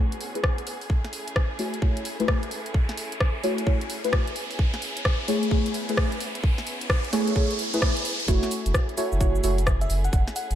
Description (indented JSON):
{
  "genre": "UK garage, two-step garage",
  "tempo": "130 BPM",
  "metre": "4/4",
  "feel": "swing 64% on 16ths",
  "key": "F# minor",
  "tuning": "A4 = 440 Hz",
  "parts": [
    { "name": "dark symphonic violin section", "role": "sustained chords", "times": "0.0-10.6 s", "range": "A3 to G#4", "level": "-37 LUFS", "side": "right 1 dB", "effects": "sidechain pumping, low-pass filter" },
    { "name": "deep mellow chord stab", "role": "stabs", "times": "0.0-9.6 s", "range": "A3 to C#5", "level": "-27 LUFS", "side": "equal", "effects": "chorus, ping-pong delay" },
    { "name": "saturated sub bass", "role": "bass", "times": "0.0-10.6 s", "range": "F#1 to A2", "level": "-26 LUFS", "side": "equal", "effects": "high-pass filter" },
    { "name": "riser", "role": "sound effects", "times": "0.0-8.3 s", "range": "none", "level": "-34 LUFS", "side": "equal", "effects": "none" },
    { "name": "garage drum kit", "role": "drums", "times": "0.1-10.6 s", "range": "hi-hat, rim click, shaker, snare drum", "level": "-30 LUFS", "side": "left 1 dB", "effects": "none" },
    { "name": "electronic kick drum", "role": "drums", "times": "0.4-10.2 s", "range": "none", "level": "-23 LUFS", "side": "equal", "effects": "none" },
    { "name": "bell-like FM electric piano", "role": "melody", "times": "9.8-10.6 s", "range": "E5 to F#5", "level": "-32 LUFS", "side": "left 1 dB", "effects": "chorus" }
  ],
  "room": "light reverb, digital ambience",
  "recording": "dark, warm production",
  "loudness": "-22 LUFS",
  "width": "side -11 dB against mid",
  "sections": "0.0-8.3 A section; 8.3-10.6 B section",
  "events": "build-up 0.0-8.3; riser 0.0-8.3; filter sweep on synth stab 0.0-8.3; drop 8.3-10.6",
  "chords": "0.0 Amaj7; 0.9 F#m7; 4.4 Amaj7; 8.3 F#m7",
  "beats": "0.44 | 0.90 1.36 1.82 2.28 | 2.74 3.21 3.67 4.13 | 4.59 5.05 5.51 5.97 | 6.44 6.90 7.36 7.82 | 8.28 8.74 9.21 9.67 | 10.13"
}